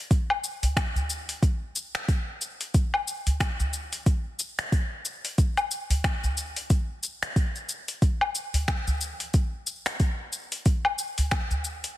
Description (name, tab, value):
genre	downtempo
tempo	91 BPM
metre	4/4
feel	swing 58% on 16ths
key	none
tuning	none
part	afro-pop drum kit	drums	0.1-11.9 s	finger snaps, hi-hat, shaker, woodblock	-29 LUFS	left 2 dB	studio reverb, soft clipping on snare
part	electronic kick drum	drums	0.1-11.5 s	none	-23 LUFS	equal	overdrive, studio reverb
part	udu	percussion	0.6-11.6 s	none	-27 LUFS	equal	none
room	little or no reverb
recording	dense, heavily limited modern master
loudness	-25 LUFS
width	side -15 dB against mid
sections	0.0-12.0 A section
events	none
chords	none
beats	| 0.11 0.77 1.43 2.09 | 2.75 3.40 4.06 4.72 | 5.38 6.04 6.70 7.36 | 8.02 8.68 9.34 10.00 | 10.66 11.32